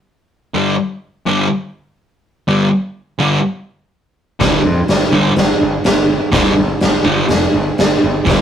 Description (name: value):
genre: garage rock duo or trio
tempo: 124 BPM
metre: 4/4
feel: straight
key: unclear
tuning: A4 = 440 Hz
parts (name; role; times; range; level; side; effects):
- fuzz guitar; riff; 0.5-8.4 s; G2 to G3; -14 LUFS; equal; distortion
- growling picked electric bass; bass; 4.4-8.4 s; F1 to F2; -20 LUFS; equal; overdrive
- oversized low-tuned drum kit; drums; 4.4-8.4 s; hi-hat, kick drum, snare drum; -13 LUFS; right 1 dB; none
room: light reverb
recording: rough rehearsal-room recording, warm saturation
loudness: -13 LUFS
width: side -9 dB against mid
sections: 0.0-8.4 A section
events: none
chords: 0.0 G5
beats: 0.06 | 0.55 1.03 1.51 1.99 | 2.48 2.96 3.44 3.92 | 4.40 4.89 5.37 5.85 | 6.34 6.82 7.30 7.79 | 8.27